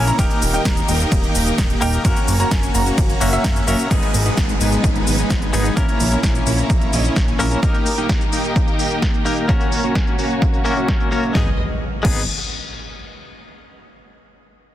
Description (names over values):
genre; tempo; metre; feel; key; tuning
EDM, festival progressive house; 129 BPM; 4/4; straight; G# minor; A4 = 440 Hz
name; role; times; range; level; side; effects
direct-recorded clean electric guitar; accompaniment; 0.0-12.2 s; G#3 to A#4; -25 LUFS; left 3 dB; tremolo, sidechain pumping, tape echo
warm studio string section; sustained chords; 0.0-11.6 s; D#3 to D#5; -28 LUFS; equal; sidechain pumping, low-pass filter
clear grand piano; arpeggios; 0.0-3.9 s; E5 to A#5; -26 LUFS; right 2 dB; sidechain pumping, tape echo
dense compressed supersaw; riff; 0.0-12.2 s; G#3 to A#5; -24 LUFS; equal; cassette tape, sidechain pumping, low-pass filter, tape echo
fat analog bass; bass; 0.0-7.6, 11.3-12.3 s; D#1 to F#2; -21 LUFS; equal; sidechain pumping
big-room dance drum kit; drums; 0.1-12.1 s; crash cymbal, hi-hat, ride cymbal, shaker, snare drum; -26 LUFS; equal; overdrive, low-pass filter on hats, low-pass filter on snare, low-pass filter on perc, low-pass filter on cymbals, low-pass filter on room
electronic kick drum; drums; 0.2-12.1 s; none; -19 LUFS; equal; overdrive
downlifter and impact; sound effects; 3.9-7.6, 11.3-13.2 s; none; -28 LUFS; right 1 dB; none
room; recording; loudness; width
digital ambience; dense, heavily limited modern master, faint mains hum; -15 LUFS; side -12 dB against mid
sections
0.0-3.9 A section; 3.9-11.3 B section; 11.3-13.2 C section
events
drop 0.0-3.9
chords
0.2 D#; 2.0 F#; 3.9 G#m; 5.8 A#dim; 7.6 D#; 9.5 F#; 11.3 G#m